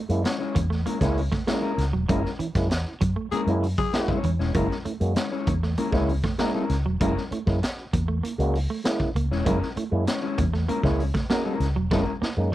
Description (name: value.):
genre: funk.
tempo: 98 BPM.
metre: 4/4.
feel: straight.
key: F# mixolydian.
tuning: A4 = 439 Hz.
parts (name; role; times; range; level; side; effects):
semi-hollow electric guitar; riff; 0.0-12.5 s; E3 to A#3; -32 LUFS; right 5 dB; spring reverb.
overdriven clav; stabs; 0.1-12.5 s; G#3 to F#4; -28 LUFS; right 1 dB; auto-wah.
vintage muted fingered electric bass; bass; 0.1-12.5 s; E1 to F#2; -25 LUFS; equal; none.
raw garage drum kit; drums; 0.1-12.5 s; hi-hat, kick drum, snare drum, toms; -28 LUFS; equal; none.
mellow electric guitar; accompaniment; 0.2-12.1 s; G#3 to C#5; -28 LUFS; left 4 dB; none.
growling tenor saxophone; second line; 3.3-4.2 s; G#4; -28 LUFS; left 7 dB; none.
room: little or no reverb.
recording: dry, close 1970s-style studio recording.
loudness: -22 LUFS.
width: side -14 dB against mid.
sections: 0.0-12.5 A section.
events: band accent 2.1-4.5; drum fill 11.9-12.5.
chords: 0.0 F#9.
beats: 0.24 0.86 1.48 | 2.09 2.70 3.32 3.93 | 4.55 5.16 5.78 6.39 | 7.01 7.62 8.23 8.85 | 9.46 10.08 10.69 11.30 | 11.92 12.53.